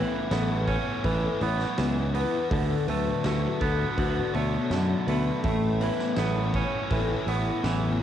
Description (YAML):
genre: rock, shoegaze and dream pop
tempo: 82 BPM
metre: 4/4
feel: straight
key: A major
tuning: A4 = 440 Hz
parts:
  - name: electric guitar through a small old amp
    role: arpeggios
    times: 0.0-8.0 s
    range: A4 to C#5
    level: -35 LUFS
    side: left 5 dB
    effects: lush chorus, cassette tape, tape echo
  - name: thick fuzz guitar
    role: riff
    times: 0.0-8.0 s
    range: D3 to C#5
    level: -30 LUFS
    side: left 7 dB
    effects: distortion, ensemble chorus, cassette tape
  - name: twangy electric guitar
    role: riff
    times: 0.0-8.0 s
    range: A2 to C#4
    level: -30 LUFS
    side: right 9 dB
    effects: reverse reverb, cassette tape
  - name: overdriven fingered electric bass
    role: bass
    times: 0.3-8.0 s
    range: A1 to F#2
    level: -28 LUFS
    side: equal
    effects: none
  - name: huge arena drum kit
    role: drums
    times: 0.3-7.8 s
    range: hi-hat, kick drum, snare drum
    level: -34 LUFS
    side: equal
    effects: cassette tape
room: small room ambience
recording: home recording on cassette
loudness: -24 LUFS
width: side -10 dB against mid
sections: 0.0-8.0 A section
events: none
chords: 0.0 Aadd9; 2.5 D6; 5.4 Aadd9